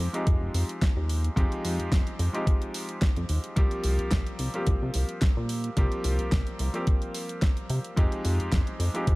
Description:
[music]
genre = nu-disco, nu disco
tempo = 109 BPM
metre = 4/4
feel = swing 54% on 16ths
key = F minor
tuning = A4 = 441 Hz
[part]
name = clear grand piano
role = accompaniment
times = 0.0-9.2 s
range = F3 to G4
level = -32 LUFS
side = equal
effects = sidechain pumping, tape echo
[part]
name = chorused synth bass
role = bass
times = 0.0-9.2 s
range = F1 to C3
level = -27 LUFS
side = equal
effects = none
[part]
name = pop drum kit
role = drums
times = 0.1-9.2 s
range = hi-hat, snare drum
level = -35 LUFS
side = equal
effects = overdrive
[part]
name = electronic kick drum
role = drums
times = 0.3-9.2 s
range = none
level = -24 LUFS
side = equal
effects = none
[sound]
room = little or no reverb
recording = none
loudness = -24 LUFS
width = side -22 dB against mid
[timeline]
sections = 0.0-9.2 A section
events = none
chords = 0.0 Fm9; 3.6 C7sus4; 8.0 Fm9

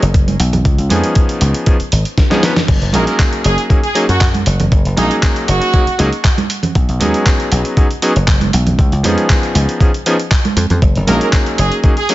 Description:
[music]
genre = nu-disco, nu disco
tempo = 118 BPM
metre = 4/4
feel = straight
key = F# major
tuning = A4 = 437 Hz
[part]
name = dry thumbed slap bass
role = bass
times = 0.0-11.7 s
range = F#1 to F#2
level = -14 LUFS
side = equal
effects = tube saturation, sidechain pumping
[part]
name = dusty soul sampler-style drum kit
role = drums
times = 0.0-12.1 s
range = crash cymbal, handclaps, hi-hat, snare drum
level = -20 LUFS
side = equal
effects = none
[part]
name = electronic kick drum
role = drums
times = 0.1-11.9 s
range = none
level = -13 LUFS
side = equal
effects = none
[part]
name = congas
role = percussion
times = 0.3-11.2 s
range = none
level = -20 LUFS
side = right 4 dB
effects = none
[part]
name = clear electric grand piano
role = accompaniment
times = 0.9-12.1 s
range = E#3 to B4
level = -18 LUFS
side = equal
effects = sidechain pumping, tape echo
[part]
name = brilliant trumpet section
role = melody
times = 2.9-6.0, 11.1-12.1 s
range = D#4 to A#4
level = -19 LUFS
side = right 2 dB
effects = tape echo
[sound]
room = digital ambience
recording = nothing above 7.8 kHz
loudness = -11 LUFS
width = side -16 dB against mid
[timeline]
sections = 0.0-12.1 A section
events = drum fill 2.2-2.7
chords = 0.0 B5; 0.7 C#7; 2.7 F#6; 6.8 B6; 8.8 C#7; 10.8 F#6

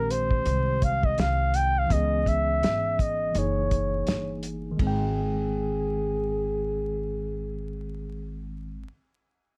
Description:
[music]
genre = hip hop, jazz-hop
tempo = 83 BPM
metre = 4/4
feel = swing 60% on 16ths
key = Ab major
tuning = A4 = 439 Hz
[part]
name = breathy flugelhorn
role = melody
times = 0.0-8.5 s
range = Ab4 to G5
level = -30 LUFS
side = equal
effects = low-pass filter
[part]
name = tine electric piano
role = accompaniment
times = 0.0-8.9 s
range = Eb3 to G5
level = -35 LUFS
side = equal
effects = low-pass filter
[part]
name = upright bass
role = bass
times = 0.0-8.8 s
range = Gb1 to Db2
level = -32 LUFS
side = equal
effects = none
[part]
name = cloth-damped thuddy drum kit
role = drums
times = 0.1-5.0 s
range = hi-hat, kick drum, ride cymbal, snare drum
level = -29 LUFS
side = equal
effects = none
[sound]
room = light reverb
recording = vinyl crackle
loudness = -26 LUFS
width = mono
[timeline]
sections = 0.0-4.8 A section; 4.8-7.7 B section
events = filter sweep 0.0-4.8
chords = 0.0 Abmaj7; 1.9 Dbm7; 3.3 Gb13; 4.8 Abmaj7

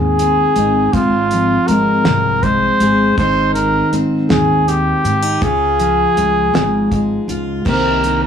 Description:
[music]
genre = indie folk with a building arrangement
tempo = 54 BPM (dotted quarters)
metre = 6/8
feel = straight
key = Ab major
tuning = A4 = 440 Hz
[part]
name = warm trumpet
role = melody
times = 0.0-8.3 s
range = F4 to C5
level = -15 LUFS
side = equal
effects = none
[part]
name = fingerpicked steel-string acoustic guitar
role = accompaniment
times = 0.0-8.3 s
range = Ab2 to Ab4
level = -18 LUFS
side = left 2 dB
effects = none
[part]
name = upright bass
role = bass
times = 0.0-8.3 s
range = Ab1 to Ab2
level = -19 LUFS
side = equal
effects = none
[part]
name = cloth-damped thuddy drum kit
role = drums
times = 0.2-8.2 s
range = crash cymbal, hi-hat, kick drum, snare drum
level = -20 LUFS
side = right 1 dB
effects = none
[part]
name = picked twelve-string acoustic guitar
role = accompaniment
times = 7.6-8.3 s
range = C3 to C5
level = -22 LUFS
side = left 3 dB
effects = none
[sound]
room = light reverb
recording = small room ambience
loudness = -12 LUFS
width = side -8 dB against mid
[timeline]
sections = 0.0-7.7 A section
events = none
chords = 0.0 Ab; 0.9 Fm/Ab; 3.2 Ab; 5.4 Db; 7.7 Cm7

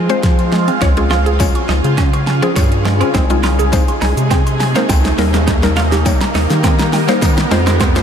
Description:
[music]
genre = dance-pop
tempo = 103 BPM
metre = 4/4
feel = straight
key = unclear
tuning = A4 = 440 Hz
[part]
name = shimmering ambient pad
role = sustained chords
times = 0.0-8.0 s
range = C3 to Bb4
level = -20 LUFS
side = right 1 dB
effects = chorus, built-in reverb, phaser, sidechain pumping
[part]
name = mallet-like synth pluck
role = arpeggios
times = 0.0-7.9 s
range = G3 to Db6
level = -24 LUFS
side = right 3 dB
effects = chorus, sidechain pumping, tape echo
[part]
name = round analog bass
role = bass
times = 0.0-8.0 s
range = C2 to F3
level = -16 LUFS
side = equal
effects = sidechain pumping
[part]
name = riser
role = sound effects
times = 0.0-8.0 s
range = none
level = -24 LUFS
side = left 1 dB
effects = none
[part]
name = mallet-like synth pluck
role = accompaniment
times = 0.1-8.0 s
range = F3 to Db5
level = -21 LUFS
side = left 3 dB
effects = chorus, sidechain pumping
[part]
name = pop drum kit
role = drums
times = 0.1-8.0 s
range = hi-hat, kick drum, shaker, snare drum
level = -16 LUFS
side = equal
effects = none
[part]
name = twelve-string electric guitar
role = riff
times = 0.8-7.9 s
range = Bb3 to F4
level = -23 LUFS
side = right 7 dB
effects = wide subtle chorus
[part]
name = tambourine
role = percussion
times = 1.4-7.4 s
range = none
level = -34 LUFS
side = left 9 dB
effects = none
[sound]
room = light reverb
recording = none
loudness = -11 LUFS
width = side -8 dB against mid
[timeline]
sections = 0.0-8.0 A section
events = build-up 0.0-8.0; drum fill 0.0-8.0; riser 0.0-8.0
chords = 0.0 Fm; 0.8 Db; 3.1 Ab/C; 5.2 Eb; 7.5 Fm

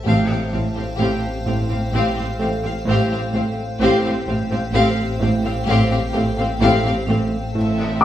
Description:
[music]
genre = cinematic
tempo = 64 BPM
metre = 4/4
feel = straight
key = unclear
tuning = A4 = 439 Hz
[part]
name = warm chamber violin section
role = melody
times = 0.1-8.0 s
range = E5 to F5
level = -26 LUFS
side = left 3 dB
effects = none
[part]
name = warm symphonic violin section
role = second line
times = 0.1-8.0 s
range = G4 to A4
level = -26 LUFS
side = left 4 dB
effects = none
[part]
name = rich chamber viola section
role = accompaniment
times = 0.1-8.0 s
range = C4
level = -27 LUFS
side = right 1 dB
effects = none
[part]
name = icy glass pad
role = sustained chords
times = 0.1-8.0 s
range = C5 to A5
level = -30 LUFS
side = equal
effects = chorus, built-in reverb
[part]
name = fat analog bass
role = riff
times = 0.1-8.0 s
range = A2 to A3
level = -23 LUFS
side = right 1 dB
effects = none
[part]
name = rich chamber cello section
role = bass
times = 0.1-8.0 s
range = A2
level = -26 LUFS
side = right 1 dB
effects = none
[part]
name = rich chamber double bass section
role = bass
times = 0.1-8.0 s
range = A1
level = -26 LUFS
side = right 2 dB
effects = none
[part]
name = analog drone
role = drone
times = 0.1-8.0 s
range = A1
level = -29 LUFS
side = equal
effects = chorus
[part]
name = timpani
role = percussion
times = 0.1-1.4 s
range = A2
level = -26 LUFS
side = equal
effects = none
[part]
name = felt-muted upright piano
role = texture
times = 8.0 s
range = D6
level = -21 LUFS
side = left 3 dB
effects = none
[sound]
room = wet recital hall reverb, RT60 1.4 s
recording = heard from further back in the room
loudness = -17 LUFS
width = side -11 dB against mid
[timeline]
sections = 0.0-8.0 A section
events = none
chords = 0.1 Fadd9/A

